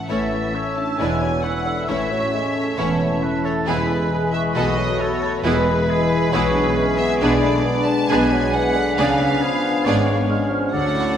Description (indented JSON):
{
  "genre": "classical, dramatic, fast romantic movement for symphony orchestra",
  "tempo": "135 BPM",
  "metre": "4/4",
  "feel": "rubato",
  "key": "A major",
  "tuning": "A4 = 440 Hz",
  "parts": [
    { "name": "warm symphonic violin section", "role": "melody", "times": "0.0-11.2 s", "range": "B4 to A5", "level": "-26 LUFS", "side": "left 1 dB", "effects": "none" },
    { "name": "concert harp", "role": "arpeggios", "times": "0.0-11.2 s", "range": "E2 to B4", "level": "-28 LUFS", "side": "left 5 dB", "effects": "none" },
    { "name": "mellow large flute ensemble", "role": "second line", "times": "0.1-11.2 s", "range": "G#5 to E#6", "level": "-29 LUFS", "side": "right 1 dB", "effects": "none" },
    { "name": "warm clarinet", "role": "second line", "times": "0.1-11.2 s", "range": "B3 to G#4", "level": "-27 LUFS", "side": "left 2 dB", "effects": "none" },
    { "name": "warm oboe", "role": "second line", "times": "0.1-11.2 s", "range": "G#4 to C#5", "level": "-28 LUFS", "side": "right 1 dB", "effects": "none" },
    { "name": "warm symphonic violin section", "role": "second line", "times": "0.1-11.2 s", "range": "E4 to D5", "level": "-30 LUFS", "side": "left 1 dB", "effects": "none" },
    { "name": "mellow bassoon", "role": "accompaniment", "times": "0.1-11.2 s", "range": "C#3 to B3", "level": "-27 LUFS", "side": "right 1 dB", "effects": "none" },
    { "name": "rich chamber viola section", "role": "accompaniment", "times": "0.1-11.2 s", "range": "A3 to F#4", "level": "-27 LUFS", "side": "right 1 dB", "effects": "none" },
    { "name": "warm French horn section", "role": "sustained chords", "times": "0.1-11.2 s", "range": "G#3 to F#4", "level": "-27 LUFS", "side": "left 2 dB", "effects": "none" },
    { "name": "warm symphonic cello section", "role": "bass", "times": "0.1-11.1 s", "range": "E2 to D3", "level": "-27 LUFS", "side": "right 2 dB", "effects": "none" },
    { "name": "warm symphonic double bass section", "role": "bass", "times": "0.1-11.1 s", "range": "E1 to D2", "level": "-28 LUFS", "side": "right 2 dB", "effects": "none" }
  ],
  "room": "wet scoring stage reverb, RT60 2.1 s",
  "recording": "none",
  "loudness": "-17 LUFS",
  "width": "side -9 dB against mid",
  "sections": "0.1-11.2 A section",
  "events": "none",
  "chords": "0.1 A; 1.0 E7; 1.9 A; 3.7 E; 4.6 B7; 5.4 E; 7.2 G#dim/B; 9.0 C#7b9",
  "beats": "| 0.09 0.55 1.00 1.44 | 1.89 2.34 2.79 3.23 | 3.67 4.12 4.56 5.00 | 5.44 5.89 6.33 6.77 | 7.21 7.65 8.09 8.53 | 8.97 9.41 9.85 10.29 | 10.73 11.17"
}